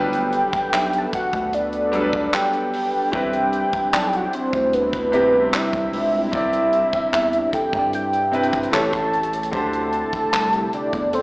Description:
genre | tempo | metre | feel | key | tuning
contemporary R&B | 75 BPM | 4/4 | straight | unclear | A4 = 440 Hz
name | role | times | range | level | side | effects
warm velvety synth lead | melody | 0.0-11.2 s | B4 to A5 | -20 LUFS | equal | chorus, tremolo
bright grand piano | accompaniment | 0.0-11.2 s | A2 to D5 | -26 LUFS | equal | none
warm analog pad | sustained chords | 0.0-11.2 s | C3 to B4 | -28 LUFS | equal | chorus, sidechain pumping
round analog bass | bass | 0.0-11.2 s | G1 to G2 | -29 LUFS | equal | none
soft round pluck | texture | 0.0-11.2 s | A4 to A5 | -32 LUFS | equal | chorus, tape echo
crisp fusion drum kit | drums | 0.1-11.2 s | handclaps, hi-hat, kick drum, rim click | -26 LUFS | equal | none
room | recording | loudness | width
light reverb | played on a big sound system in a bare room, large studio reverb, AM radio sound | -18 LUFS | side -24 dB against mid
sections
0.0-11.2 A section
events
none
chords
0.0 Gmaj7; 3.1 Cmaj7; 8.7 A7; 9.5 D7sus4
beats
0.73 1.53 2.33 | 3.13 3.93 4.73 5.53 | 6.33 7.13 7.93 8.73 | 9.53 10.33 11.13

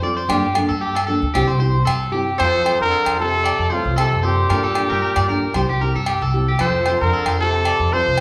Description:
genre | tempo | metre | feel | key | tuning
highlife guitar band | 114 BPM | 4/4 | swing 54% on 16ths | F major | A4 = 436 Hz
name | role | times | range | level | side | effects
nylon-string guitar | accompaniment | 0.0-8.1 s | F3 to A4 | -28 LUFS | equal | none
electric guitar at the edge of break-up | arpeggios | 0.0-8.2 s | G4 to D5 | -26 LUFS | equal | warbly pitch drift
upright bass | bass | 0.0-8.2 s | C2 to G2 | -24 LUFS | equal | none
agogo bells | percussion | 0.3-8.2 s | none | -28 LUFS | equal | none
clear trumpet | melody | 2.4-8.2 s | F4 to C5 | -22 LUFS | equal | slapback echo
bright trombone | second line | 2.4-8.2 s | A2 to F3 | -32 LUFS | equal | none
room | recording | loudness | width
wet large studio reverb, RT60 1.4 s | band playing live in one room | -19 LUFS | mono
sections
0.0-2.4 A section; 2.4-8.2 B section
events
none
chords
0.3 Gmadd9; 1.3 C; 2.4 F; 4.5 Gmadd9; 5.5 C; 6.6 F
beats
| 0.29 0.82 1.34 1.87 | 2.39 2.92 3.44 3.97 | 4.50 5.02 5.55 6.08 | 6.61 7.13 7.66 8.19

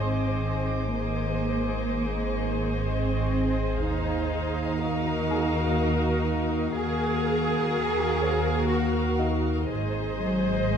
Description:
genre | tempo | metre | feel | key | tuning
cinematic | 62 BPM | 3/4 | straight | Eb dorian | A4 = 445 Hz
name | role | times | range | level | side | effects
warm symphonic violin section | melody | 0.0-10.8 s | Eb5 to F5 | -36 LUFS | left 4 dB | none
dark symphonic viola section | accompaniment | 0.0-10.8 s | Gb4 to C5 | -31 LUFS | equal | none
dark symphonic double bass section | bass | 0.0-10.8 s | Ab1 to Eb2 | -30 LUFS | right 3 dB | none
warm studio cello section | bass | 0.0-10.8 s | Gb3 to Ab4 | -29 LUFS | right 1 dB | none
organ-like drone | drone | 0.0-10.8 s | Ab1 to Eb2 | -31 LUFS | left 2 dB | ensemble chorus, built-in reverb
dark studio violin section | texture | 0.0-3.3 s | Ab5 to D6 | -39 LUFS | equal | none
felt-muted upright piano | texture | 0.0-10.8 s | Eb4 to C6 | -38 LUFS | left 4 dB | none
room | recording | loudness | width
moderate scoring stage reverb, RT60 1.7 s | dark, warm production | -24 LUFS | side -7 dB against mid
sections
0.0-10.8 A section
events
none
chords
0.0 Ab; 3.9 Ebmadd9; 9.7 Ab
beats
| 0.96 1.92 2.89 | 3.85 4.82 5.79 | 6.78 7.74 8.71 | 9.69 10.67

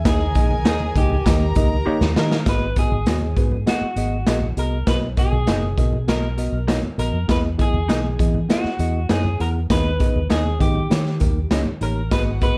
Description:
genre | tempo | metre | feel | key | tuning
uptempo 1960s-style soul | 100 BPM | 4/4 | straight | G# minor | A4 = 440 Hz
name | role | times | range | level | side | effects
electric guitar through a small old amp | melody | 0.0-12.6 s | F#4 to B4 | -30 LUFS | equal | vibrato effect, slapback echo, plate reverb
warm studio violin section | second line | 0.0-2.4, 12.1-12.6 s | F#4 to A#5 | -32 LUFS | equal | plate reverb
tine electric piano | accompaniment | 0.1-12.6 s | G#2 to F#5 | -28 LUFS | equal | plate reverb
vintage muted fingered electric bass | bass | 0.1-12.4 s | F#1 to E3 | -25 LUFS | equal | none
raw garage drum kit | drums | 0.1-12.6 s | hi-hat, kick drum, snare drum | -23 LUFS | equal | none
congas | percussion | 0.1-12.3 s | none | -35 LUFS | equal | none
electric guitar through a small old amp | stabs | 0.7-11.6 s | B3 to D#5 | -31 LUFS | equal | plate reverb
room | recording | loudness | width
light reverb | dark, warm production | -20 LUFS | mono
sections
0.0-2.5 A section; 2.5-12.6 B section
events
drum fill 1.9-2.5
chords
0.1 D#sus4; 1.3 D#; 2.5 G#m7; 4.9 Bmaj7; 7.3 Emaj7; 9.7 G#m/D#; 10.9 D#7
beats
| 0.05 0.66 1.26 1.86 | 2.46 3.07 3.67 4.27 | 4.88 5.48 6.08 6.68 | 7.29 7.89 8.49 9.10 | 9.70 10.30 10.91 11.51 | 12.11

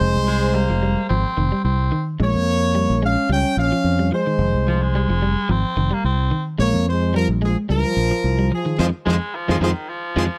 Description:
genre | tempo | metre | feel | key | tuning
afrobeat | 109 BPM | 4/4 | straight | Bb dorian | A4 = 438 Hz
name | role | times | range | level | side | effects
brilliant horn section | melody | 0.0-10.2 s | F4 to G5 | -26 LUFS | equal | none
warm French horn | second line | 0.0-10.2 s | F3 to Db4 | -27 LUFS | equal | none
fingered electric bass | bass | 0.0-10.3 s | F1 to F2 | -22 LUFS | equal | none
raspy baritone saxophone | second line | 0.3-10.4 s | Eb3 to C4 | -28 LUFS | equal | none
electric guitar at the edge of break-up | arpeggios | 0.3-10.3 s | Eb3 to Ab3 | -26 LUFS | equal | vibrato effect
room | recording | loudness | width
studio ambience | dry, close 1970s-style studio recording | -20 LUFS | mono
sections
0.0-10.4 A section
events
band accent 8.8-10.4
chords
0.0 Fm9; 2.2 Bbm7; 4.4 Fm9; 6.6 Bb7(no3); 8.8 Fm7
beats
| 0.00 0.55 1.10 1.65 | 2.20 2.75 3.30 3.85 | 4.40 4.95 5.50 6.05 | 6.60 7.15 7.70 8.24 | 8.79 9.34 9.89

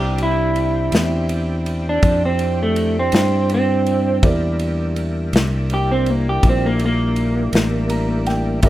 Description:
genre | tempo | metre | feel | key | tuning
slow blues | 54 BPM (dotted quarters) | 12/8 | straight | C mixolydian | A4 = 440 Hz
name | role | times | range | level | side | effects
electric guitar through a small old amp | melody | 0.0-8.7 s | A3 to G4 | -20 LUFS | right 1 dB | none
warm concert grand piano | accompaniment | 0.0-8.7 s | E4 to Bb5 | -28 LUFS | right 2 dB | none
tonewheel organ | sustained chords | 0.0-8.7 s | G3 to G4 | -27 LUFS | equal | chorus vibrato, slow rotary speaker
fingered electric bass | bass | 0.0-8.7 s | G1 to G2 | -20 LUFS | equal | none
natural country drum kit | drums | 0.2-8.7 s | kick drum, ride cymbal, snare drum | -20 LUFS | left 1 dB | none
room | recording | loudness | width
studio reverb | rough home demo mix | -16 LUFS | side -14 dB against mid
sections
0.0-8.7 A section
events
clean electric guitar solo 0.0-8.7; grand piano fill 7.5-8.6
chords
0.0 C9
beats
0.92 2.03 3.13 | 4.23 5.34 6.44 7.54 | 8.64

